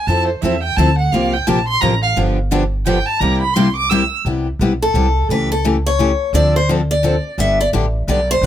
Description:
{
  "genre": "acoustic string swing (jazz manouche)",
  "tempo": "172 BPM",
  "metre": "3/4",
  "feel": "swing 61% on 8ths",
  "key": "C major from 4.3 s",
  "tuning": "A4 = 441 Hz",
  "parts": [
    { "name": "warm violin", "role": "second line", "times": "0.0-4.2 s", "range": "C5 to E6", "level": "-18 LUFS", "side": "right 2 dB", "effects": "none" },
    { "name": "picked steel-string acoustic guitar", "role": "accompaniment", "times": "0.1-8.5 s", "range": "C3 to A4", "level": "-18 LUFS", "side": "left 3 dB", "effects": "none" },
    { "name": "picked steel-string acoustic guitar", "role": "accompaniment", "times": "0.1-4.0, 8.4-8.5 s", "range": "C3 to A4", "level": "-22 LUFS", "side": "right 6 dB", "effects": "none" },
    { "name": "upright bass", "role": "bass", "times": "0.1-8.5 s", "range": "G1 to F2", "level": "-19 LUFS", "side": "equal", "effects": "none" },
    { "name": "picked steel-string acoustic guitar", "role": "melody", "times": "4.8-8.5 s", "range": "A4 to E5", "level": "-17 LUFS", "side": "left 1 dB", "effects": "none" }
  ],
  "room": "little or no reverb",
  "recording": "close, detailed microphones",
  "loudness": "-14 LUFS",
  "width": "side -11 dB against mid",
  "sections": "0.0-4.3 A section; 4.3-8.5 A section",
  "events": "violin solo 0.0-4.3; steel-string acoustic guitar solo 4.3-8.5",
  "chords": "0.1 Fmaj7; 1.1 C7sus4; 2.2 G7; 3.2 C7; 4.3 Cmaj7; 5.3 A7/C#; 6.3 Dm7; 7.4 G",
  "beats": "| 0.08 0.42 0.77 | 1.12 1.47 1.82 | 2.17 2.51 2.86 | 3.21 3.56 3.90 | 4.25 4.60 4.95 | 5.29 5.64 5.99 | 6.34 6.69 7.03 | 7.38 7.73 8.08 | 8.43"
}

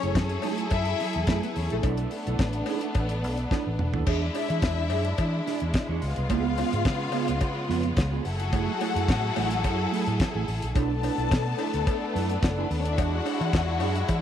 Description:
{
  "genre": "disco",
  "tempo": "108 BPM",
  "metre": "4/4",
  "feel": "straight",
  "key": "B dorian",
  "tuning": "A4 = 440 Hz",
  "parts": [
    { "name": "warm studio violin section", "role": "second line", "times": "0.0-14.2 s", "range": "G#3 to A5", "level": "-32 LUFS", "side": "left 11 dB", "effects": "tape echo" },
    { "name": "mellow electric guitar", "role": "accompaniment", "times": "0.0-14.0 s", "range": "A3 to D5", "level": "-32 LUFS", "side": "right 12 dB", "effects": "wide subtle chorus" },
    { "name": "clear studio string section", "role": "sustained chords", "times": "0.0-14.2 s", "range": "C#3 to A4", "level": "-31 LUFS", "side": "equal", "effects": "none" },
    { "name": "fingered electric bass", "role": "bass", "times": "0.0-14.2 s", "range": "E1 to E3", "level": "-28 LUFS", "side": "equal", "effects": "none" },
    { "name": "damped 70s drum kit", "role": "drums", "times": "0.0-14.2 s", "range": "crash cymbal, hi-hat, kick drum, snare drum, toms", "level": "-28 LUFS", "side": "equal", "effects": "none" },
    { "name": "cowbell", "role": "percussion", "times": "0.2-14.2 s", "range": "none", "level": "-40 LUFS", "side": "left 12 dB", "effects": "none" }
  ],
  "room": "light reverb, studio reverb",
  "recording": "1960s-style stereo with parts hard left and right",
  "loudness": "-24 LUFS",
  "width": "side -10 dB against mid",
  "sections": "0.0-4.1 A section; 4.1-14.2 B section",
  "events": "drum fill 3.5-4.1",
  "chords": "0.0 F#m9; 1.8 Bm7; 4.1 E13; 6.0 C#7; 8.3 F#m9; 10.8 Bm11; 13.0 E13",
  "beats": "0.16 0.72 1.28 | 1.84 2.40 2.96 3.51 | 4.07 4.63 5.19 5.75 | 6.30 6.86 7.42 7.97 | 8.53 9.09 9.64 10.20 | 10.76 11.31 11.87 12.43 | 12.98 13.54 14.09"
}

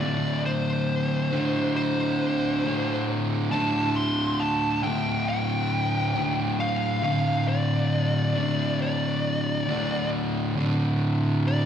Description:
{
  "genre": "metal",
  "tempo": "68 BPM",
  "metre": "4/4",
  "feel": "straight",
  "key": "unclear",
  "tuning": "A4 = 440 Hz",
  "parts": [
    { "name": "fuzz lead guitar", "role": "melody", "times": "0.0-11.7 s", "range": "C5 to C6", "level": "-28 LUFS", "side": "left 1 dB", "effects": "distortion, slapback echo, tape echo" },
    { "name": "fuzz guitar", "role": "riff", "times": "0.0-11.7 s", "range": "D2 to D3", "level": "-24 LUFS", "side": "equal", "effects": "distortion" }
  ],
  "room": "light reverb",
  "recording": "live gig heard through the venue's PA, recital hall reverb",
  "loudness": "-23 LUFS",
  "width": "side -9 dB against mid",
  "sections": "0.0-10.6 A section; 10.6-11.7 B section",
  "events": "none",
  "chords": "0.0 D5",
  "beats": "| 0.01 0.88 1.76 2.64 | 3.52 4.40 5.28 6.16 | 7.04 7.92 8.80 9.68 | 10.56 11.45"
}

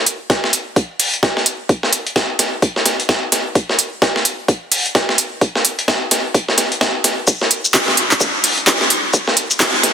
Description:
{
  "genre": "minimal techno",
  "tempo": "129 BPM",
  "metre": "4/4",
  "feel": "swing 60% on 16ths",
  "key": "none",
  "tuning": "none",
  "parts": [
    { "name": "breakbeat sampler-style drum kit", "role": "drums", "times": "0.1-9.9 s", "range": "hi-hat, snare drum", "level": "-17 LUFS", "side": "equal", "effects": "sidechain pumping on hats, high-pass filter on hats, soft clipping on snare, high-pass filter on snare, high-pass filter on room" },
    { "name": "minimal click drum kit", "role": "drums", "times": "0.1-9.9 s", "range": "handclaps, hi-hat, shaker", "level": "-14 LUFS", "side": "right 1 dB", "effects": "none" },
    { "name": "electronic kick drum", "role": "drums", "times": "0.3-9.7 s", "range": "none", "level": "-15 LUFS", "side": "equal", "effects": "high-pass filter on kick" }
  ],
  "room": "moderate lush hall reverb, RT60 2.1 s",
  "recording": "dense, heavily limited modern master, high-pass filter",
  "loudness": "-14 LUFS",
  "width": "side -8 dB against mid",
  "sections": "0.0-9.9 A section",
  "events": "build-up 0.0-9.9",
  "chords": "none",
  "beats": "0.30 0.76 1.23 | 1.69 2.16 2.62 3.09 | 3.56 4.02 4.49 4.95 | 5.42 5.88 6.35 6.81 | 7.28 7.74 8.21 8.67 | 9.14 9.60"
}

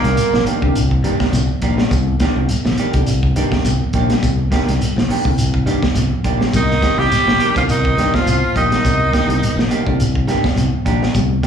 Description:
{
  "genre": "afrobeat",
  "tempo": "104 BPM",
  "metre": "4/4",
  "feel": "swing 55% on 16ths",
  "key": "C minor",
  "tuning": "A4 = 441 Hz",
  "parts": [
    { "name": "raspy tenor saxophone", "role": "melody", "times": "0.0-0.4, 6.6-9.7 s", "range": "Bb3 to G4", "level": "-18 LUFS", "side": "right 2 dB", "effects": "slapback echo" },
    { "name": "growling trumpet", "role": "second line", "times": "0.0-0.4, 6.6-9.7 s", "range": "Bb4 to G5", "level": "-25 LUFS", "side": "right 4 dB", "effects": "slapback echo" },
    { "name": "raspy baritone saxophone", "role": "second line", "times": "0.0-0.4, 6.5-9.7 s", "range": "Bb2 to G3", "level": "-25 LUFS", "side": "left 1 dB", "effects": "slapback echo" },
    { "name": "semi-hollow electric guitar", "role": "arpeggios", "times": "0.0-11.4 s", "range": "D3 to G3", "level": "-25 LUFS", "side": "left 4 dB", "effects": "wide subtle chorus, slapback echo" },
    { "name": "clean electric guitar", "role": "stabs", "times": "0.0-11.5 s", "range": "Eb3 to G4", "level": "-23 LUFS", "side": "right 5 dB", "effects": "lush chorus, slapback echo" },
    { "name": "modern bright fingered electric bass", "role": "bass", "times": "0.0-11.5 s", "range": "Bb1 to G2", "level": "-19 LUFS", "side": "equal", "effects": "none" },
    { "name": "crunchy breakbeat drum kit", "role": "drums", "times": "0.0-11.5 s", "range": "hi-hat, kick drum, snare drum", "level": "-19 LUFS", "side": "equal", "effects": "none" },
    { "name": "shekere", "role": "percussion", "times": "0.2-11.5 s", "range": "none", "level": "-24 LUFS", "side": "equal", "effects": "slapback echo" }
  ],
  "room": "light reverb",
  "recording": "live gig heard through the venue's PA, club reverb, studio ambience",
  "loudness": "-14 LUFS",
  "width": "side -8 dB against mid",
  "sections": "0.0-11.5 A section",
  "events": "none",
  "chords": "0.0 Cm9",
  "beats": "0.18 0.76 1.34 | 1.92 2.49 3.07 3.65 | 4.23 4.80 5.38 5.96 | 6.53 7.11 7.69 8.26 | 8.84 9.42 9.99 10.57 | 11.15"
}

